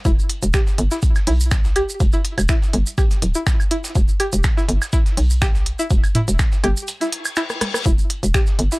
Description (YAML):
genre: minimal techno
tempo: 123 BPM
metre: 4/4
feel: swing 54% on 16ths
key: E minor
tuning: A4 = 440 Hz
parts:
  - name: string-like resonator pluck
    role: riff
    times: 0.1-8.8 s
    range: E4 to G4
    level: -25 LUFS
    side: equal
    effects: chorus, sidechain pumping, tape echo
  - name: hollow knocking FM bass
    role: bass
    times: 0.1-8.7 s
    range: D1 to B1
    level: -19 LUFS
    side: equal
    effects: sidechain pumping
  - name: dusty soul sampler-style drum kit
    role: drums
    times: 0.1-8.8 s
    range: hi-hat, snare drum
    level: -35 LUFS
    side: equal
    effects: high-pass filter on snare, sidechain pumping on hats, high-pass filter on hats, high-pass filter on room
  - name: electronic kick drum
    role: drums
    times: 0.1-8.4 s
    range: none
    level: -18 LUFS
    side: equal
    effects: none
  - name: maracas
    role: percussion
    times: 0.1-8.8 s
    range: none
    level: -30 LUFS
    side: right 3 dB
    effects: none
  - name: minimal click drum kit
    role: drums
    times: 0.3-8.7 s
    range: finger snaps, hi-hat, rim click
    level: -24 LUFS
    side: equal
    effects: none
  - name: electronic woodblock and toms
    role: percussion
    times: 0.5-8.4 s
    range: none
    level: -24 LUFS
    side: right 1 dB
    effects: none
  - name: reverse cymbal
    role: sound effects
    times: 7.1-7.9 s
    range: none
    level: -28 LUFS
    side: left 5 dB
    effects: none
room: little or no reverb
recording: dry, gritty hardware recording, transformer saturation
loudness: -16 LUFS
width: side -23 dB against mid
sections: 0.0-8.8 A section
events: break 6.9-7.9; reverse cymbal 7.1-7.9; drum fill 7.5-7.9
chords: 0.0 E5